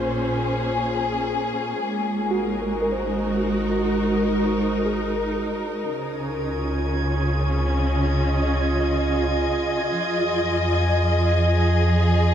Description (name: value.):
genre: ambient.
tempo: 59 BPM.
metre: 4/4.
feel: straight.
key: unclear.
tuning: A4 = 440 Hz.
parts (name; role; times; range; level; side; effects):
dark symphonic string section; sustained chords; 0.0-12.3 s; Bb2 to Eb5; -22 LUFS; equal; none.
muted felt-like synth keys; arpeggios; 0.0-12.3 s; F4 to F5; -31 LUFS; right 1 dB; chorus, analog delay.
round analog bass; bass; 0.0-12.3 s; Ab1 to F2; -25 LUFS; equal; none.
drifting glass-harmonics texture; texture; 6.2-12.3 s; Ab4 to Ab5; -28 LUFS; right 1 dB; chorus, built-in reverb.
room: wet spring reverb, RT60 2.7 s.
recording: echo-heavy mix.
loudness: -20 LUFS.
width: side -9 dB against mid.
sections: 0.0-12.3 A section.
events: fade-in on analog synth bass 0.0-12.3; fade-out on synth keys 0.0-12.3.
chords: 0.0 Bbm7; 1.8 Ab9sus4; 5.9 Dbadd9; 9.9 Fm7.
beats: 0.79 | 1.81 2.83 3.84 4.86 | 5.88 6.89 7.91 8.93 | 9.94 10.96 11.98.